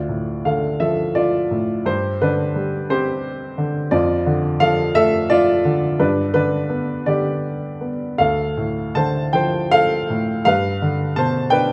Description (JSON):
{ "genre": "classical, lyrical solo piano", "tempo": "52-59 BPM (dotted quarters)", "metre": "6/8", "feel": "rubato", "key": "unclear", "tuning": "A4 = 440 Hz", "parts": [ { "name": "clear upright piano", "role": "solo", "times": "0.0-11.7 s", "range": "D2 to A5", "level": "-19 LUFS", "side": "equal", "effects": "none" } ], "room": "moderate recital hall reverb, RT60 1.6 s", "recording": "dark, warm production", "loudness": "-19 LUFS", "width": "mono", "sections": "0.0-11.7 A section", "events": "none", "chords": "0.0 Dm; 1.9 Gsus4; 3.9 Dm/F; 6.0 G; 8.2 Dm7; 10.5 G7", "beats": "0.81 | 1.87 2.90 | 3.92 4.95 | 6.00 7.07 | 8.19 9.34 | 10.46 11.51" }